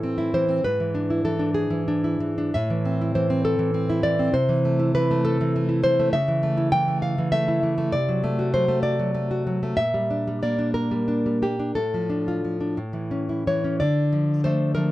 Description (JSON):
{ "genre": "romantic piece for solo classical guitar", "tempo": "57-69 BPM (dotted quarters)", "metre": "6/8", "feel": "rubato", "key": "A minor", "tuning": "A4 = 442 Hz", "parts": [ { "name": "nylon-string guitar", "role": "solo", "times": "0.0-14.9 s", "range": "G#2 to G5", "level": "-21 LUFS", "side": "equal", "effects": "none" } ], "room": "light reverb", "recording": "dark, warm production", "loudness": "-21 LUFS", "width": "side -16 dB against mid", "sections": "0.0-13.8 A section; 13.8-14.9 B section", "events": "none", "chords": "0.0 Am; 0.6 E7/G#; 2.5 Am; 4.3 Am/C; 6.1 A/C#; 7.9 D7/C; 9.8 Gm/Bb; 11.8 Dm/A; 12.8 A; 13.8 Dm" }